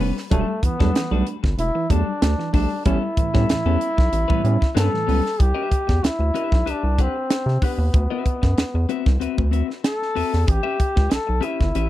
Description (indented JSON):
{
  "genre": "funk",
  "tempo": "94 BPM",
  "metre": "4/4",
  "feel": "straight",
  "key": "unclear",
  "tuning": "A4 = 440 Hz",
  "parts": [
    { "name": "clean electric guitar", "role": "accompaniment", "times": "0.0-11.9 s", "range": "G3 to F#5", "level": "-28 LUFS", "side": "left 10 dB", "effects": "spring reverb" },
    { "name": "overdriven tine electric piano", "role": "stabs", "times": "0.0-5.2 s", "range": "A2 to D4", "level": "-26 LUFS", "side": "right 7 dB", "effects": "none" },
    { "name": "round analog bass", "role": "bass", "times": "0.0-11.9 s", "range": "E1 to C3", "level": "-21 LUFS", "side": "equal", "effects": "none" },
    { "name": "crisp fusion drum kit", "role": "drums", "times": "0.0-11.9 s", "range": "hi-hat, kick drum, snare drum", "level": "-21 LUFS", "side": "equal", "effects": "none" },
    { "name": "bright trombone", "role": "melody", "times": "0.3-11.9 s", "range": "A3 to A4", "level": "-25 LUFS", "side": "left 1 dB", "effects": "none" }
  ],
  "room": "small room ambience",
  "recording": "dry, close 1970s-style studio recording",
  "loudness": "-18 LUFS",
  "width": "side -14 dB against mid",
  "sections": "0.0-5.4 A section; 5.4-11.9 B section",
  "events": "none",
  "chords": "0.3 Em11; 2.9 A9; 5.4 Cmaj9; 7.9 D13; 10.5 A9"
}